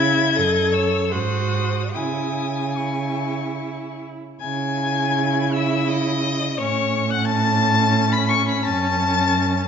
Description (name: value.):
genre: classical, slow romantic movement for string quartet.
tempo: 71-89 BPM.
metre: 3/4.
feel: rubato.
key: C# minor.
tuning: A4 = 440 Hz.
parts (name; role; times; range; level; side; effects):
rich violin; melody; 0.0-9.7 s; C#6 to C#7; -25 LUFS; left 9 dB; none.
rich violin; second line; 0.0-9.7 s; B#4 to C#6; -25 LUFS; left 4 dB; none.
clear viola; accompaniment; 0.0-9.7 s; C#4 to A4; -25 LUFS; equal; none.
rich cello; bass; 0.0-9.7 s; F#2 to C#3; -23 LUFS; right 4 dB; none.
room: moderate scoring stage reverb, RT60 1.8 s.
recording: nothing above 7.7 kHz.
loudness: -18 LUFS.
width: side -7 dB against mid.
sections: 0.0-4.4 A section; 4.4-9.7 B section.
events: none.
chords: 0.4 F#m; 1.1 G#7; 1.9 C#m; 6.6 A; 8.6 F#m.